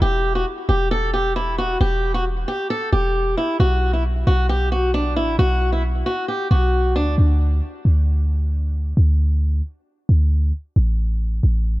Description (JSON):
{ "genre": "hip hop, trap", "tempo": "134 BPM", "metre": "4/4", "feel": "half-time", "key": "unclear", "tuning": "A4 = 440 Hz", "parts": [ { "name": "picked swing-style acoustic guitar", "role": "melody", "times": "0.0-7.1 s", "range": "D4 to A4", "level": "-21 LUFS", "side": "equal", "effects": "low-pass filter, tape echo" }, { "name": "clean 808-style bass", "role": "bass", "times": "0.0-11.8 s", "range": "E1 to D2", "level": "-18 LUFS", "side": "equal", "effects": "none" } ], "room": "studio reverb", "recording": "dark, warm production", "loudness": "-17 LUFS", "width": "side -18 dB against mid", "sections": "0.0-11.8 A section", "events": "none", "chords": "0.0 Em; 3.6 B5; 7.2 N.C.", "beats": "| 0.02 0.46 0.91 1.36 | 1.81 2.25 2.70 3.15 | 3.60 4.05 4.49 4.94 | 5.39 5.84 6.28 6.73 | 7.18 7.63 8.08 8.52 | 8.97 9.42 9.87 10.31 | 10.76 11.21 11.66" }